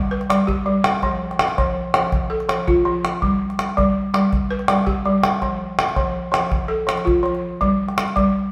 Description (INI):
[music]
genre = west african traditional, West African string and xylophone music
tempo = 109 BPM (dotted quarters)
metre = 12/8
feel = straight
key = unclear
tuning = A4 = 439 Hz
[part]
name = balafon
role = arpeggios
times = 0.0-8.5 s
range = F3 to B4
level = -22 LUFS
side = equal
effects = none
[part]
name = calabash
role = percussion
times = 0.2-8.2 s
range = none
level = -24 LUFS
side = equal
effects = none
[sound]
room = wet stone room reverb, RT60 1.3 s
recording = band playing live in one room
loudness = -20 LUFS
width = mono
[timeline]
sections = 0.0-8.5 A section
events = none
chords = 0.0 G; 1.0 F; 3.2 G; 5.4 F; 7.6 N.C.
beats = 0.48 | 1.02 1.57 2.12 2.67 | 3.21 3.76 4.31 4.86 | 5.41 5.96 6.51 7.06 | 7.61 8.16